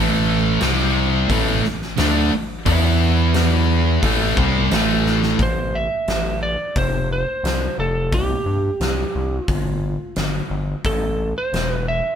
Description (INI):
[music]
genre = hard rock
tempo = 88 BPM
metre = 4/4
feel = straight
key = A minor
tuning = A4 = 441 Hz
[part]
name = distorted electric guitar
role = riff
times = 0.0-5.4 s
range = A2 to E4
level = -22 LUFS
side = left 9 dB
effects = overdrive
[part]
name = sludgy distorted guitar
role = riff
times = 0.0-5.4 s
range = A2 to E4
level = -20 LUFS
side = right 6 dB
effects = overdrive
[part]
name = gritty driven synth bass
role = bass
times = 0.0-12.0 s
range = E1 to G2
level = -22 LUFS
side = left 1 dB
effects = none
[part]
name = huge arena drum kit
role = drums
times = 0.6-11.7 s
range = hi-hat, kick drum, snare drum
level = -24 LUFS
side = left 1 dB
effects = none
[part]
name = lightly driven lead guitar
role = melody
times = 5.4-12.2 s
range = G4 to E5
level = -23 LUFS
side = right 2 dB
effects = none
[sound]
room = moderate studio reverb, RT60 0.8 s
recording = band playing live in one room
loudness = -17 LUFS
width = side -8 dB against mid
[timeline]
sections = 0.0-5.4 A section; 5.4-12.2 B section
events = drum fill 5.1-5.4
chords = 0.0 A5; 0.6 C5; 1.3 A5; 2.7 E5; 4.0 Am; 5.4 A5; 6.8 F5; 8.1 C5; 9.5 N.C.; 10.9 A5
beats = 0.62 1.30 1.98 | 2.66 3.35 4.03 4.71 | 5.39 6.08 6.76 7.44 | 8.12 8.81 9.49 10.17 | 10.85 11.53